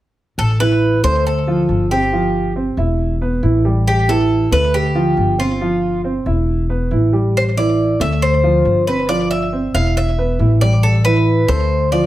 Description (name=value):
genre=latin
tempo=138 BPM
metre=4/4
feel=straight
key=A minor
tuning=A4 = 440 Hz
part: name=Cuban tres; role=melody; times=0.4-12.1 s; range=F4 to F5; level=-18 LUFS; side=equal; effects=slapback echo, plate reverb
part: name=upright bass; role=bass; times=0.4-12.1 s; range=E1 to D2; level=-17 LUFS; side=left 1 dB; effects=none
part: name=warm grand piano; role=arpeggios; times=0.6-12.1 s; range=E3 to E5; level=-18 LUFS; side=right 2 dB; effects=none
room=light reverb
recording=none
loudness=-14 LUFS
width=side -14 dB against mid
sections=0.4-12.1 A section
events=none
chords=0.4 A5; 1.3 Dm7; 2.1 G7sus4; 3.0 E5; 3.9 A5; 4.7 Dm7; 5.6 G7sus4; 6.5 E5; 7.3 A5; 8.2 Dm7; 9.1 G7sus4; 10.0 E5; 10.8 A5